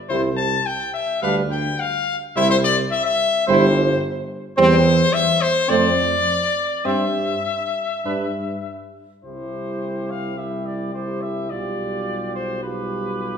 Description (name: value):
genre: classical, brass quintet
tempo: 106 BPM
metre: 4/4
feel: rubato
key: C major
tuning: A4 = 444 Hz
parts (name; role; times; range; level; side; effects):
- warm trumpet; melody; 0.1-13.4 s; B4 to A5; -22 LUFS; left 3 dB; none
- clear flugelhorn; second line; 0.1-13.4 s; G4 to C5; -27 LUFS; right 6 dB; none
- clear French horn; accompaniment; 0.1-13.4 s; C4 to F4; -27 LUFS; left 2 dB; none
- dark euphonium; accompaniment; 0.1-13.4 s; G3 to A3; -28 LUFS; right 3 dB; none
- warm tuba; bass; 0.1-13.4 s; G1 to G2; -24 LUFS; right 2 dB; none
room: wet recital hall reverb, RT60 1.6 s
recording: recorded in a church or concert hall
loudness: -18 LUFS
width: side -7 dB against mid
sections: 0.0-9.3 A section; 9.3-13.4 B section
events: none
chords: 0.1 C; 1.2 G5/D; 2.4 C; 4.6 C/E; 5.7 F; 6.9 C/G; 8.1 G5; 9.3 C; 11.5 G7/B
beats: | 0.10 0.67 1.23 1.79 | 2.37 2.92 3.48 4.03 | 4.58 5.14 5.69 6.26 | 6.85 7.45 8.05 8.65 | 9.25 9.82 10.38 10.95 | 11.51 12.08 12.64 13.20